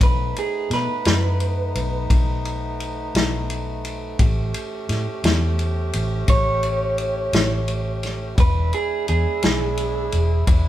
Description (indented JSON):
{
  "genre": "slow blues",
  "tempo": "57 BPM (dotted quarters)",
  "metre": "12/8",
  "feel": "straight",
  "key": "unclear",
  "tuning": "A4 = 437 Hz",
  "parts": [
    { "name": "electric guitar through a small old amp", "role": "second line", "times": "0.0-10.4 s", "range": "G#4 to C#5", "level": "-24 LUFS", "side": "right 3 dB", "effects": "none" },
    { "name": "mellow horn section", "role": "sustained chords", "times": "0.0-10.7 s", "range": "G#3 to G4", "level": "-31 LUFS", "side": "equal", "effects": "none" },
    { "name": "vintage muted fingered electric bass", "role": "bass", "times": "0.0-10.7 s", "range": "E1 to B2", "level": "-23 LUFS", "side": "equal", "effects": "none" },
    { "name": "vintage drum kit", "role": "drums", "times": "0.0-10.6 s", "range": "kick drum, ride cymbal, snare drum", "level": "-21 LUFS", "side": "left 1 dB", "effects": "none" }
  ],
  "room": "light reverb",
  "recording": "band playing live in one room",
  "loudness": "-19 LUFS",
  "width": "side -13 dB against mid",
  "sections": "0.0-10.7 A section",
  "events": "clean electric guitar solo 0.0-10.7",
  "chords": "0.0 B7; 4.2 A7; 8.4 E7"
}